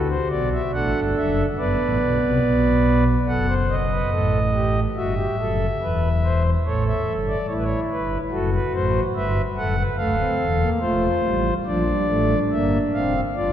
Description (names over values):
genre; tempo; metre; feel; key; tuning
classical, baroque-style 4-part fugue for pipe organ; 71 BPM; 4/4; straight; unclear; A4 = 439 Hz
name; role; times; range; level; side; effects
pipe organ, principal; solo; 0.0-13.5 s; D1 to F#5; -19 LUFS; equal; none
room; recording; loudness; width
wet church reverb, RT60 3.0 s; dark, warm production; -19 LUFS; side -10 dB against mid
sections
0.0-3.3 A section; 3.3-13.5 B section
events
none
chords
0.0 D; 1.6 G; 3.3 B7/F# (rootless); 5.0 Em; 6.7 A7; 8.3 Am13/F#; 10.0 Dm; 11.7 Gm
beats
0.74 1.58 2.43 | 3.28 4.13 4.97 5.82 | 6.66 7.50 8.33 9.16 | 9.99 10.82 11.66 12.51 | 13.37